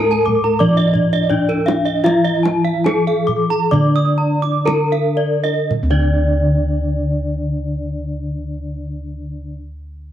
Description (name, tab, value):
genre	Balinese gamelan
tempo	55-94 BPM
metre	4/4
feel	straight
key	D pelog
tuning	A4 = 440 Hz
part	gamelan-type bronze metallophone	melody	0.0-9.6 s	D4 to D5	-20 LUFS	left 1 dB	none
part	gamelan-type bronze metallophone	accompaniment	0.0-9.6 s	D3 to D4	-24 LUFS	left 2 dB	none
part	gamelan-type bronze metallophone	arpeggios	0.0-9.6 s	D5 to D6	-25 LUFS	left 5 dB	slapback echo
part	gamelan-type bossed gongs	bass	0.0-9.5 s	D2 to A4-45c	-20 LUFS	equal	none
part	gamelan-type bronze metallophone	arpeggios	0.1-9.6 s	Bb4-40c to Eb6	-24 LUFS	right 7 dB	slapback echo
part	kendang	percussion	0.1-6.2 s	none	-24 LUFS	right 4 dB	none
room	small room ambience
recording	dry, close 1970s-style studio recording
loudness	-14 LUFS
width	side -11 dB against mid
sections	0.0-5.7 A section; 5.7-10.1 B section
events	slowing down 0.0-5.7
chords	none